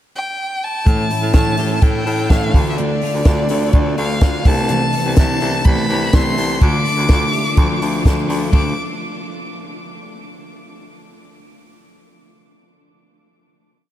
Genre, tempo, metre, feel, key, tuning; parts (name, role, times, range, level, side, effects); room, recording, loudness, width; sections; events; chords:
jangly indie pop; 125 BPM; 4/4; straight; D dorian; A4 = 438 Hz
rich violin; melody; 0.2-8.8 s; D5 to D6; -22 LUFS; equal; ping-pong delay
fingerpicked steel-string acoustic guitar; accompaniment; 0.9-8.7 s; A2 to F4; -24 LUFS; right 3 dB; analog chorus
twelve-string electric guitar; arpeggios; 0.9-8.7 s; A2 to A4; -23 LUFS; left 4 dB; ensemble chorus, ping-pong delay
clear baritone saxophone; bass; 0.9-8.7 s; C2 to A2; -22 LUFS; equal
compact cocktail drum kit; drums; 0.9-8.6 s; crash cymbal, hi-hat, kick drum, snare drum; -16 LUFS; equal
moderate huge ambient reverb, RT60 7.3 s; dreamy mix soaked in reverb; -14 LUFS; side -12 dB against mid
0.0-0.9 pickup bar; 0.9-8.5 verse; 8.5-10.4 final chord
0.0 N.C.; 0.9 A; 2.5 Dm; 4.5 Amadd9/C; 6.6 Dm